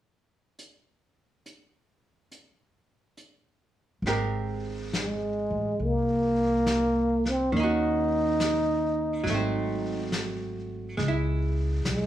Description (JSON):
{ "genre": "jazz ballad", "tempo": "69 BPM", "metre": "4/4", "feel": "swing 68% on 8ths", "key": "Ab major", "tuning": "A4 = 440 Hz", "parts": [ { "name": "vintage brush drum kit", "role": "drums", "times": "0.6-12.1 s", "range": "brushed snare drum, hi-hat, snare drum", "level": "-35 LUFS", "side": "left 2 dB", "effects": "none" }, { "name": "upright bass", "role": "bass", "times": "4.0-12.1 s", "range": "Ab1 to Eb2", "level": "-30 LUFS", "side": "equal", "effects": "none" }, { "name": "archtop guitar, miked and amplified", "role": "accompaniment", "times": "4.1-12.1 s", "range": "Eb3 to Bb4", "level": "-32 LUFS", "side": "right 2 dB", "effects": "none" }, { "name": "trombone with plunger mute", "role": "melody", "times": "5.0-12.1 s", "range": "Ab3 to Eb4", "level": "-25 LUFS", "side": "equal", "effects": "none" } ], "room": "light reverb", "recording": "studio reverb", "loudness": "-24 LUFS", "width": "side -12 dB against mid", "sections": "0.6-4.0 A section; 4.0-12.1 B section", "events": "none", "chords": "0.6 N.C.; 4.0 Abmaj9; 7.5 Ebm7; 9.3 Ab7b9; 11.0 Dbm7" }